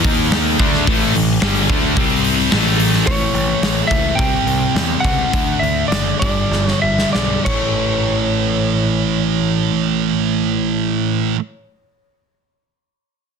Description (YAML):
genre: hard rock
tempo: 92-109 BPM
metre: 4/4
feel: straight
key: unclear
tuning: A4 = 441 Hz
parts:
  - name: overdriven semi-hollow guitar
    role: riff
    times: 0.0-11.4 s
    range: G2 to D#4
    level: -22 LUFS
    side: left 10 dB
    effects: none
  - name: scooped high-gain guitar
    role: riff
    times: 0.0-11.4 s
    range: G2 to D#4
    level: -20 LUFS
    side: right 13 dB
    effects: distortion
  - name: tight distorted guitar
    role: riff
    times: 0.0-3.1 s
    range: G2 to D#4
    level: -20 LUFS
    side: left 1 dB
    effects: distortion
  - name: big rock drum kit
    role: drums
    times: 0.0-7.6 s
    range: crash cymbal, hi-hat, kick drum, snare drum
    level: -20 LUFS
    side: equal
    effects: none
  - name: growling picked electric bass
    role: bass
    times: 0.1-11.3 s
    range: F#1 to E2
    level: -22 LUFS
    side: equal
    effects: overdrive
  - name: lightly driven lead guitar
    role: melody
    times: 3.1-11.2 s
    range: C#5 to G5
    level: -22 LUFS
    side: equal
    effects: none
room: light reverb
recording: dense, heavily limited modern master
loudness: -14 LUFS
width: side -6 dB against mid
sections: 0.0-3.1 A section; 3.1-7.8 B section; 7.8-10.4 C section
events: slowing down 3.1-7.8; drum fill 6.5-7.8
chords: 0.0 D#5; 0.6 A5; 2.0 C5; 2.5 A5; 3.1 A; 4.2 C; 5.3 D; 6.2 G; 7.5 A